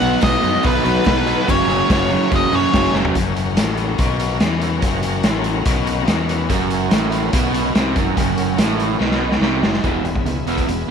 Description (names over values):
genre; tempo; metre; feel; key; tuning
classic rock; 144 BPM; 4/4; straight; F# major; A4 = 440 Hz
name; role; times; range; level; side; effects
nasal lead guitar with a parked wah; melody; 0.0-2.9 s; B4 to F#5; -20 LUFS; left 1 dB; overdrive, slapback echo
picked swing-style acoustic guitar; accompaniment; 0.0-3.2 s; F#2 to F#4; -29 LUFS; left 13 dB; none
bright tonewheel organ; sustained chords; 0.0-10.9 s; C#4 to B4; -27 LUFS; equal; slow rotary speaker, overdrive, chorus vibrato
biting overdriven guitar; riff; 0.0-3.1 s; F#2 to B3; -24 LUFS; equal; spring reverb
crunchy overdriven guitar; riff; 0.0-3.1, 6.5-10.9 s; E2 to B3; -21 LUFS; right 14 dB; none
raw garage guitar; riff; 0.0-10.9 s; F#2 to E4; -24 LUFS; left 15 dB; overdrive
growling fingered electric bass; bass; 0.0-10.8 s; E1 to F#2; -24 LUFS; left 1 dB; overdrive
raw garage drum kit; drums; 0.0-10.8 s; hi-hat, kick drum, snare drum, toms; -20 LUFS; equal; none
room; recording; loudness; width
light reverb, small room ambience; 1960s-style stereo with parts hard left and right; -15 LUFS; side -7 dB against mid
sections
0.0-3.2 A section; 3.2-9.8 B section; 9.8-10.9 C section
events
drum fill 2.9, 9.0-9.8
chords
0.0 B; 1.5 F#; 9.8 E